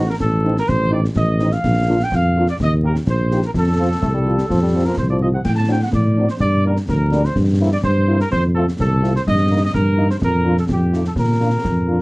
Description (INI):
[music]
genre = military-style march for wind band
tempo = 126 BPM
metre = 2/4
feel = straight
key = Bb major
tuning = A4 = 439 Hz
[part]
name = mellow trumpet section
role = melody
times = 0.0-12.0 s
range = G4 to A5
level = -22 LUFS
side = right 1 dB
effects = none
[part]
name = mellow French horn section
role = accompaniment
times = 0.0-12.0 s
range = F3 to G4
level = -23 LUFS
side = equal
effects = none
[part]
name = mellow tuba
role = bass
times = 0.0-12.0 s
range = A1 to Bb2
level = -17 LUFS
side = equal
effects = none
[part]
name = concert snare drum, concert bass drum and clash cymbals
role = drums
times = 0.2-11.8 s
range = none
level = -23 LUFS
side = equal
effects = none
[part]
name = clear euphonium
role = second line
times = 4.0-5.4 s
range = C3 to A3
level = -23 LUFS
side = left 1 dB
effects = none
[sound]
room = light reverb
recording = dark, warm production, vinyl crackle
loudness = -15 LUFS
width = side -22 dB against mid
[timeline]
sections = 0.0-12.0 A section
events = none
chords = 0.0 Adim; 1.6 Bb; 2.6 Eb; 3.5 F; 5.4 D7/A; 6.4 Gm; 7.4 C7/G; 8.3 F; 9.3 Eb/G; 10.2 Bb/F; 10.7 F7; 11.2 Bb